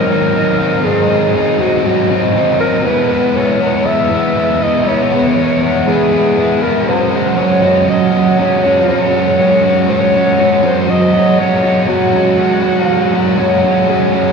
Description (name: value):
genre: rock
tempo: 120 BPM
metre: 4/4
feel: straight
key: unclear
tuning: A4 = 440 Hz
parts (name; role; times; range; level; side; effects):
- growling alto saxophone; melody; 0.0-14.3 s; Gb4 to E5; -15 LUFS; equal; ping-pong delay
- biting overdriven guitar; riff; 0.0-14.3 s; Ab2 to Gb4; -12 LUFS; equal; lush chorus
room: wet plate reverb, RT60 2.5 s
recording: dreamy mix soaked in reverb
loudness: -10 LUFS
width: side -5 dB against mid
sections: 0.0-14.3 A section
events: none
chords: 0.0 Ab7; 2.9 E6; 6.9 Gbsus2